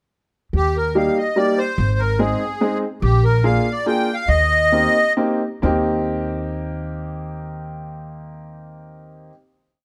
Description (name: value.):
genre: musette waltz.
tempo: 128-146 BPM.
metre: 3/4.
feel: straight.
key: Eb major.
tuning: A4 = 439 Hz.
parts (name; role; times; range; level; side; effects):
upright bass; bass; 0.5-9.3 s; Ab1 to Eb2; -24 LUFS; equal; none.
accordion; melody; 0.6-5.1 s; G4 to G5; -21 LUFS; equal; light tremolo tuning.
bright upright piano; accompaniment; 1.0-9.3 s; G3 to Ab4; -23 LUFS; equal; none.
room: light reverb.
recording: close, detailed microphones.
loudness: -19 LUFS.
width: mono.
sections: 0.5-5.6 A section; 5.6-8.4 final chord.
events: slowing down 3.0-5.6.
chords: 0.5 Eb; 1.8 Ab; 3.0 Bb7; 4.3 Eb6.